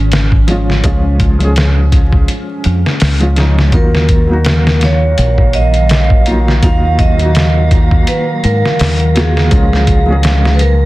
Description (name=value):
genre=trip hop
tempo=83 BPM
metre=4/4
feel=swing 56% on 16ths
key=Eb minor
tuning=A4 = 444 Hz
part: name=felt-muted upright piano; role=accompaniment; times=0.0-10.9 s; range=Bb2 to Ab4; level=-19 LUFS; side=equal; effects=tremolo, tape echo
part: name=warbly tape-like pad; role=sustained chords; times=0.0-10.9 s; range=Eb3 to F5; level=-21 LUFS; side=right 1 dB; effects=chorus, built-in reverb, phaser
part: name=deep dub fingered electric bass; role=bass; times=0.0-10.9 s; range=Ab1 to Ab2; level=-12 LUFS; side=equal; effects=none
part: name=trip hop sampler-style drum kit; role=drums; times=0.1-10.8 s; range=hi-hat, kick drum, snare drum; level=-13 LUFS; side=equal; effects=none
part: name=vibraphone with medium hard mallets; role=melody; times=3.7-10.9 s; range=Ab4 to F5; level=-18 LUFS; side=right 2 dB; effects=tape echo
part: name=wind-like tuned noise texture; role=texture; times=4.9-10.9 s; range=Gb3 to Bb5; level=-26 LUFS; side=left 1 dB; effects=built-in reverb
room=digital ambience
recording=dense, heavily limited modern master, vinyl crackle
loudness=-9 LUFS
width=side -18 dB against mid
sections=0.0-10.9 A section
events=none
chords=0.0 Db; 3.7 Ebmadd9; 9.5 Db